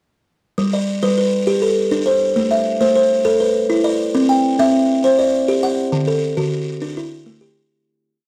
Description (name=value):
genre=southern african traditional, mbira-style interlocking cycle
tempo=135 BPM (dotted quarters)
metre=12/8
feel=straight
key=G major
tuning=A4 = 444 Hz
part: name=buzzing kalimba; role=solo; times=0.6-7.9 s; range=D3 to G5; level=-17 LUFS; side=equal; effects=none
room=moderate small room reverb, RT60 0.6 s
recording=none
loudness=-17 LUFS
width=mono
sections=0.6-7.7 A section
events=fade-out 5.9-7.7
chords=0.6 G; 2.4 Am; 4.1 C; 5.9 D